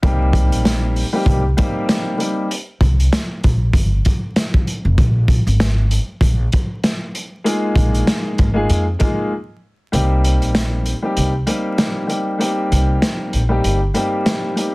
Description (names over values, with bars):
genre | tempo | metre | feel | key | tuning
hip hop, boom-bap hip-hop | 97 BPM | 4/4 | swing 56% on 16ths | C minor | A4 = 440 Hz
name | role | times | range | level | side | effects
dark baby grand piano | accompaniment | 0.0-2.5, 7.4-14.7 s | G3 to Ab4 | -20 LUFS | left 1 dB | high-pass filter, low-pass filter
upright bass | bass | 0.0-13.9 s | F1 to F2 | -16 LUFS | equal | none
crunchy breakbeat drum kit | drums | 0.0-14.7 s | hi-hat, kick drum, snare drum | -18 LUFS | equal | none
room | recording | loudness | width
light reverb | dense, heavily limited modern master, vinyl crackle | -15 LUFS | side -23 dB against mid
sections
0.0-9.9 A section; 9.9-14.7 A section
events
break 9.3-9.9; kick muted 9.9-14.7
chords
0.0 Cm7; 5.0 Bb7sus4; 9.9 Cm7